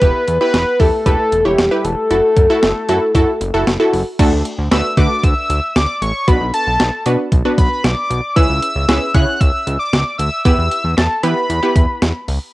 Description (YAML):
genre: synth-pop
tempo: 115 BPM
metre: 4/4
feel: straight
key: unclear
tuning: A4 = 440 Hz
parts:
  - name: fat analog lead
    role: melody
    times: 0.0-12.2 s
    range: G4 to F#6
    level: -17 LUFS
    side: left 1 dB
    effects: plate reverb
  - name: wide unison pluck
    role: accompaniment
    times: 0.0-12.1 s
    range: A3 to C#5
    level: -18 LUFS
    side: equal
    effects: cassette tape, plate reverb
  - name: fat analog bass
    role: bass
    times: 0.0-12.4 s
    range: E1 to E3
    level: -19 LUFS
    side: equal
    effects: none
  - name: clean 12-bit digital drum machine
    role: drums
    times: 0.0-12.4 s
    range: crash cymbal, hi-hat, kick drum, snare drum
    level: -15 LUFS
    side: equal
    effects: cassette tape
room: moderate studio reverb, RT60 0.6 s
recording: home recording on cassette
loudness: -13 LUFS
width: side -18 dB against mid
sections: 0.0-4.2 A section; 4.2-12.5 B section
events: none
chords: 0.0 Em; 2.1 F#m7; 4.2 D; 6.3 Bm; 8.4 C#m7; 10.5 Em